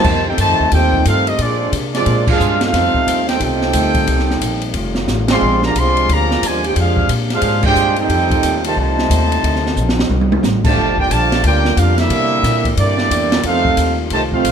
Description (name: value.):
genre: jazz, big band swing.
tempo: 179 BPM.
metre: 4/4.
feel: swing 63% on 8ths.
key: F major.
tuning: A4 = 440 Hz.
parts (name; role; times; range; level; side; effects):
clear trumpet section; melody; 0.0-14.5 s; Bb3 to C6; -17 LUFS; equal; none.
clear trombone section; second line; 0.0-14.5 s; C3 to G4; -20 LUFS; right 4 dB; none.
clear trombone section; sustained chords; 0.0-14.5 s; Bb2 to Ab4; -26 LUFS; left 1 dB; none.
upright bass; bass; 0.0-14.5 s; F1 to C3; -18 LUFS; left 1 dB; none.
open jazz drum kit; drums; 0.0-14.5 s; crash cymbal, hi-hat, kick drum, ride cymbal, snare drum, toms; -20 LUFS; equal; none.
room: light reverb.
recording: none.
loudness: -13 LUFS.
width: side -7 dB against mid.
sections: 0.0-14.5 A section.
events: band accent 2.2, 5.2, 7.6, 10.6; drum fill 5.1-5.4, 9.8-10.4.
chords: 0.0 F9; 1.4 Bb9; 2.7 F9; 4.1 Cm7; 4.7 F9; 5.4 Bb9; 8.1 F9; 9.4 D7b9; 10.8 Gm7; 12.1 C9; 13.4 F9.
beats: | 0.04 0.38 0.72 1.05 | 1.39 1.72 2.06 2.39 | 2.73 3.06 3.40 3.73 | 4.07 4.41 4.74 5.08 | 5.41 5.75 6.08 6.42 | 6.75 7.08 7.42 7.75 | 8.09 8.42 8.76 9.09 | 9.43 9.76 10.10 10.43 | 10.76 11.10 11.43 11.77 | 12.10 12.43 12.77 13.10 | 13.44 13.77 14.11 14.44.